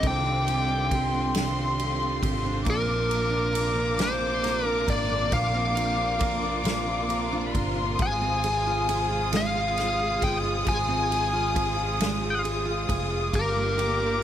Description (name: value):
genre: six-eight pop ballad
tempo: 45 BPM (dotted quarters)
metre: 6/8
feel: straight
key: unclear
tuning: A4 = 438 Hz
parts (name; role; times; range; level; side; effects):
- smooth overdriven lead guitar; melody; 0.0-14.2 s; Bb4 to Ab5; -28 LUFS; left 1 dB; none
- warm studio violin section; second line; 0.0-14.2 s; B5 to Eb6; -31 LUFS; left 2 dB; none
- picked steel-string acoustic guitar; accompaniment; 0.0-14.2 s; G2 to Bb4; -32 LUFS; right 6 dB; none
- clear studio string section; sustained chords; 0.0-14.2 s; C3 to Ab4; -32 LUFS; left 1 dB; none
- fretless electric bass; bass; 0.0-14.2 s; F1 to C2; -31 LUFS; equal; analog chorus
- natural country drum kit; drums; 0.0-14.0 s; kick drum, ride cymbal, snare drum; -32 LUFS; equal; none
room: light reverb, small room ambience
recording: none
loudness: -23 LUFS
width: side -10 dB against mid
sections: 0.0-14.2 A section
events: none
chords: 0.0 Cmadd9; 2.7 Bbadd9; 8.0 Fm; 13.3 Gm7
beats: | 0.03 1.34 | 2.66 3.99 | 5.32 6.66 | 7.99 9.33 | 10.66 12.00 | 13.33